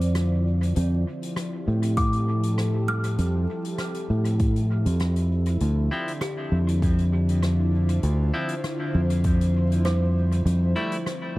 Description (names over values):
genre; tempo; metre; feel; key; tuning
ambient dub; 99 BPM; 4/4; swing 53% on 16ths; D minor; A4 = 439 Hz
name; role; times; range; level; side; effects
airy breathy pad; sustained chords; 0.0-11.4 s; D3 to D5; -31 LUFS; left 1 dB; chorus
kalimba; arpeggios; 0.0-11.2 s; G3 to F6; -34 LUFS; right 1 dB; analog delay
fingered electric bass; bass; 0.0-10.7 s; D2 to A2; -21 LUFS; equal; none
soft-mallet drum kit; drums; 0.0-11.2 s; hi-hat, rim click; -37 LUFS; left 1 dB; dub echo
electronic kick drum; drums; 2.0-9.4 s; none; -24 LUFS; equal; none
clean electric guitar; stabs; 5.9-11.0 s; F3 to E4; -32 LUFS; left 1 dB; dub echo
room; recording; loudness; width
studio ambience; echo-heavy mix, vinyl crackle; -21 LUFS; side -19 dB against mid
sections
0.0-11.4 A section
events
none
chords
0.0 Dm9; 0.8 Fmaj9; 5.6 Dm9; 10.5 Fmaj9